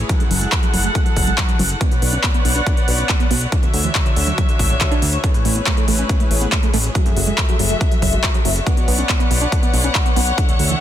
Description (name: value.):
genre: uplifting trance.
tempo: 140 BPM.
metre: 4/4.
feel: straight.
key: unclear.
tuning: A4 = 440 Hz.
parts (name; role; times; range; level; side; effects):
dark chamber string section; sustained chords; 0.0-10.8 s; D3 to F#5; -23 LUFS; left 2 dB; sidechain pumping, low-pass filter.
fat analog bass; bass; 0.0-10.8 s; F#1 to D2; -20 LUFS; equal; sidechain pumping.
tight sequenced synth; arpeggios; 0.1-10.8 s; D2 to D4; -25 LUFS; right 3 dB; chorus, sidechain pumping, digital delay.
big-room dance drum kit; drums; 0.1-10.8 s; handclaps, hi-hat; -22 LUFS; left 1 dB; none.
electronic kick drum; drums; 0.1-10.5 s; none; -18 LUFS; equal; none.
room: little or no reverb.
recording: dense, heavily limited modern master.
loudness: -15 LUFS.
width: side -11 dB against mid.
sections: 0.0-10.8 A section.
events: filter sweep on synth arpeggio sound 0.0-10.8.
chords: 0.1 F#m7; 1.8 Bmadd9; 3.5 Dmaj7; 5.2 Amaj7; 7.0 F#m7; 8.7 Bmadd9.